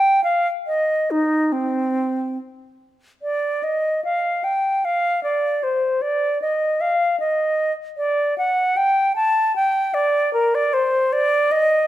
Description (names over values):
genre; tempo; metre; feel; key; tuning
classical, baroque-style fantasia for unaccompanied flute; 70-78 BPM; 3/4; rubato; C minor; A4 = 438 Hz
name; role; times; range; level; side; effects
concert flute; solo; 0.0-11.9 s; C4 to A5; -18 LUFS; equal; none
room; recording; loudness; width
moderate recital hall reverb, RT60 1.4 s; none; -18 LUFS; side -13 dB against mid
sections
0.0-3.2 A section; 3.2-11.9 A section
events
none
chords
none